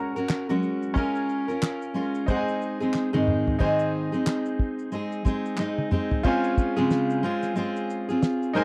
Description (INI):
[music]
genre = acoustic pop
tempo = 91 BPM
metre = 4/4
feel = swing 60% on 16ths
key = Db major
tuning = A4 = 439 Hz
[part]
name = clear grand piano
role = accompaniment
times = 0.0-8.6 s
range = Db4 to Bb5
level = -34 LUFS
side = equal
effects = none
[part]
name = fingerpicked steel-string acoustic guitar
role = accompaniment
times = 0.0-8.6 s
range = Ab2 to Bb4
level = -27 LUFS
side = equal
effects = none
[part]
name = cloth-damped thuddy drum kit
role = drums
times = 0.2-8.6 s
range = crash cymbal, kick drum, shaker, snare drum, toms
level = -28 LUFS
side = equal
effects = none
[part]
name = group handclap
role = percussion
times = 0.3-5.8 s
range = none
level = -40 LUFS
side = equal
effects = none
[sound]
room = little or no reverb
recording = dry, close 1970s-style studio recording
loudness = -26 LUFS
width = mono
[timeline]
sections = 0.0-3.6 A section; 3.6-6.2 B section; 6.2-8.6 C section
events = drum fill 2.9-3.6, 5.6-6.2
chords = 0.0 Gbadd9; 1.0 Bbm7; 2.3 Ab; 6.2 Dbmaj7